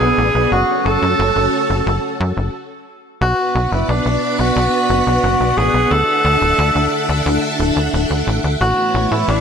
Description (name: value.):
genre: synthwave.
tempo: 89 BPM.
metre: 4/4.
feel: straight.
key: unclear.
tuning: A4 = 440 Hz.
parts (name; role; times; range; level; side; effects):
breathy tenor saxophone; melody; 0.0-9.4 s; D4 to A4; -17 LUFS; right 1 dB; ping-pong delay.
string machine, full ensemble; sustained chords; 0.0-9.4 s; A3 to F#5; -19 LUFS; equal; ensemble chorus.
tight sequencer bass; bass; 0.0-9.4 s; D1 to A2; -18 LUFS; equal; none.
room: moderate plate reverb, RT60 2.6 s.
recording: bright 1980s-style digital production.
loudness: -14 LUFS.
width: side -7 dB against mid.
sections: 0.0-3.2 A section; 3.2-9.4 B section.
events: break 2.5-3.2.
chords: 0.0 Bm; 0.5 F#m; 3.2 Bm; 5.9 Dadd9; 8.6 Aadd9.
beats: | 0.52 1.19 1.86 2.54 | 3.21 3.89 4.56 5.24 | 5.91 6.58 7.26 7.93 | 8.61 9.28.